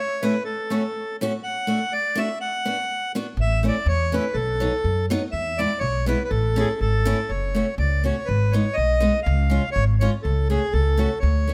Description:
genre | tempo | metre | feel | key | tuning
alpine folk, alpine dance band | 123 BPM | 2/4 | swing 55% on 8ths | A major, F# minor from 7.3 s | A4 = 440 Hz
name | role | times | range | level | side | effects
accordion | melody | 0.0-11.5 s | G#4 to F#5 | -27 LUFS | equal | none
picked steel-string acoustic guitar | accompaniment | 0.2-11.5 s | F#3 to F#4 | -30 LUFS | equal | none
upright bass | bass | 3.4-11.5 s | F#1 to F#2 | -24 LUFS | equal | none
room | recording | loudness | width
light reverb | close, detailed microphones | -23 LUFS | mono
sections
0.0-7.3 A section; 7.3-11.5 B section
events
none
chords
0.5 F#m; 1.4 D; 2.4 Bm; 3.4 A; 4.4 B; 5.3 E; 6.3 A; 7.3 F#m; 8.3 G#m; 9.2 C#; 10.2 F#m/C#

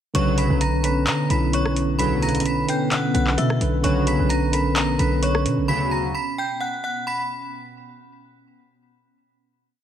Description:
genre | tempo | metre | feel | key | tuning
hip hop, trap | 130 BPM | 4/4 | half-time | B harmonic minor | A4 = 440 Hz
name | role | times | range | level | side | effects
metallic FM bell | melody | 0.1-7.5 s | C#5 to B6 | -26 LUFS | equal | chorus, ping-pong delay
mellow tine electric piano | accompaniment | 0.1-5.7 s | D3 to B4 | -24 LUFS | right 1 dB | medium stereo tremolo
airy breathy pad | sustained chords | 0.1-7.5 s | B2 to C#4 | -29 LUFS | equal | chorus
chorused polysynth | stabs | 0.1-6.1 s | D2 to F#3 | -26 LUFS | equal | none
hard-hitting 808-style bass | bass | 0.1-5.7 s | A#1 to D3 | -23 LUFS | left 1 dB | none
booming analog drum machine | drums | 0.1-5.6 s | handclaps, hi-hat, rim click | -26 LUFS | left 1 dB | vintage 12-bit sampler grit
room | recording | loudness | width
light reverb, digital ambience | none | -19 LUFS | side -10 dB against mid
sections
0.1-7.5 hook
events
none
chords
0.1 Bmadd9

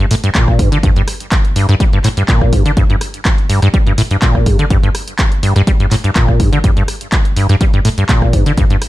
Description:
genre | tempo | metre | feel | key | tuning
acid house | 124 BPM | 4/4 | swing 53% on 16ths | G minor | A4 = 440 Hz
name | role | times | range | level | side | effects
acid bass, saw | riff | 0.0-8.8 s | G2 to G3 | -13 LUFS | equal | analog chorus, tape echo
punchy analog drum machine | drums | 0.1-8.9 s | handclaps, hi-hat, rim click | -21 LUFS | equal | none
electronic kick drum | drums | 0.3-8.7 s | none | -13 LUFS | equal | none
room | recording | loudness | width
light reverb | dark, warm production | -10 LUFS | side -16 dB against mid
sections
0.0-8.9 A section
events
none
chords
none

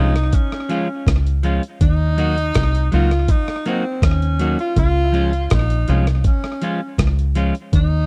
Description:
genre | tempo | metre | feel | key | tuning
roots reggae | 81 BPM | 4/4 | straight | Db major | A4 = 436 Hz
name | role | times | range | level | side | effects
warm tenor saxophone | melody | 0.0-8.1 s | C4 to F4 | -26 LUFS | equal | tape echo
clean electric guitar | accompaniment | 0.0-7.5 s | F3 to Gb4 | -25 LUFS | equal | tape echo
deep dub fingered electric bass | bass | 0.0-8.1 s | Bb1 to Eb2 | -19 LUFS | equal | none
dusty soul sampler-style drum kit | drums | 0.2-7.9 s | hi-hat, kick drum, rim click | -21 LUFS | equal | overdrive, slapback echo
room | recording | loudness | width
little or no reverb | dry, close 1970s-style studio recording | -18 LUFS | mono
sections
0.0-8.1 A section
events
none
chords
0.0 Db; 1.8 Ebm; 4.8 Db

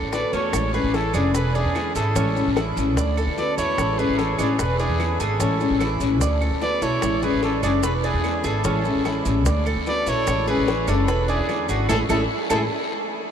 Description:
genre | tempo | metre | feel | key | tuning
latin, Cuban son and guajira | 148 BPM | 4/4 | straight | A major | A4 = 442 Hz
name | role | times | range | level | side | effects
Cuban tres | arpeggios | 0.0-12.6 s | C#4 to D5 | -27 LUFS | right 3 dB | none
upright bass | bass | 0.0-12.7 s | E1 to D3 | -25 LUFS | equal | none
clear trumpet | melody | 0.1-12.6 s | F#4 to D5 | -26 LUFS | right 1 dB | analog delay
rich chamber violin section | second line | 0.1-12.6 s | D4 to B4 | -32 LUFS | equal | none
nylon-string guitar | accompaniment | 0.1-12.6 s | D3 to F#4 | -26 LUFS | left 3 dB | none
bongos | percussion | 0.1-12.6 s | none | -33 LUFS | left 5 dB | none
guiro | percussion | 0.1-12.6 s | none | -38 LUFS | left 6 dB | none
maracas | percussion | 0.1-12.6 s | none | -39 LUFS | right 10 dB | none
claves | percussion | 0.5-12.6 s | none | -40 LUFS | right 8 dB | none
room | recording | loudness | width
wet huge ambient reverb, RT60 7.4 s | in a vast, echoing space | -19 LUFS | side -8 dB against mid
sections
0.5-13.3 A section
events
band accent 11.9-13.3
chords
0.0 D6; 0.5 Amaj7; 1.3 E7; 2.2 Amaj7; 3.0 D6; 3.8 Amaj7; 4.6 E7; 5.4 Amaj7; 6.2 D6; 7.0 Amaj7; 7.8 E7; 8.6 Amaj7; 9.5 D6; 10.3 Amaj7; 11.1 E7; 11.9 Amaj7; 12.7 N.C.

